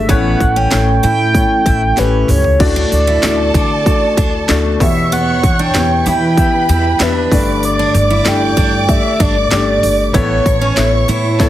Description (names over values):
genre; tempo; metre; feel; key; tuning
piano-driven pop; 96 BPM; 4/4; straight; unclear; A4 = 441 Hz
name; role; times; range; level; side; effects
mellow horn-like synth lead; melody; 0.0-11.5 s; B4 to G5; -16 LUFS; right 1 dB; chorus, plate reverb
dark upright piano; accompaniment; 0.0-11.5 s; G2 to E5; -18 LUFS; left 4 dB; plate reverb
upright bass; bass; 0.0-11.5 s; G1 to E3; -17 LUFS; equal; none
picked steel-string acoustic guitar; riff; 0.1-11.5 s; B3 to E4; -22 LUFS; right 4 dB; none
house drum kit; drums; 0.1-11.5 s; crash cymbal, handclaps, hi-hat, kick drum, snare drum, toms; -17 LUFS; equal; none
warm studio violin section; second line; 2.6-11.5 s; A4 to D6; -22 LUFS; right 1 dB; none
room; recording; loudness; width
light reverb; heavily compressed radio sound; -11 LUFS; side -13 dB against mid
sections
0.0-11.5 A section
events
drum fill 2.0-2.6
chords
0.1 A; 2.6 D; 4.8 Em; 7.3 Gsus2; 10.1 Aadd9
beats
| 0.09 0.71 1.34 1.97 | 2.60 3.23 3.86 4.49 | 5.12 5.74 6.37 7.00 | 7.63 8.26 8.88 9.51 | 10.14 10.77 11.40